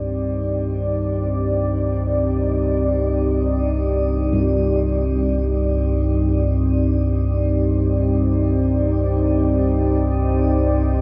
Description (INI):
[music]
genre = ambient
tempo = free time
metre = none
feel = none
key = C minor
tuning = A4 = 440 Hz
[part]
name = deep dark ambient pad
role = sustained chords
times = 0.0-11.0 s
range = C4 to D5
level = -23 LUFS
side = equal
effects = chorus, built-in reverb, shimmer reverb
[part]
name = deep rumbling drone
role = drone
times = 0.0-11.0 s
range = C2 to G2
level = -22 LUFS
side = equal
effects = built-in reverb, lush chorus
[part]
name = gamelan-type bossed gongs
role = arpeggios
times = 4.3-11.0 s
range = G2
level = -31 LUFS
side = equal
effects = analog delay
[sound]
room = wet lush hall reverb, RT60 2.6 s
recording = dreamy mix soaked in reverb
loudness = -20 LUFS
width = mono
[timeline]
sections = 0.0-11.0 A section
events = none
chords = 0.0 Cmadd9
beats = free time